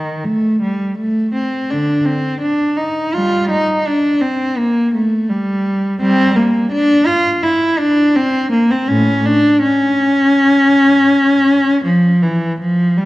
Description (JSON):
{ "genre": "classical, baroque-style suite movement for unaccompanied cello", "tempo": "83 BPM", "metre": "4/4", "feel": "rubato", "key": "G minor", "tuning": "A4 = 440 Hz", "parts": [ { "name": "dark cello", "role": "solo", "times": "0.0-13.1 s", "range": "A2 to F4", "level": "-12 LUFS", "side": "equal", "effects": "none" } ], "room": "wet recital hall reverb, RT60 1.8 s", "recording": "worn, warbling old tape, cassette tape, warbly pitch drift", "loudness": "-12 LUFS", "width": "side -18 dB against mid", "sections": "0.0-13.1 A section", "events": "none", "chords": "none" }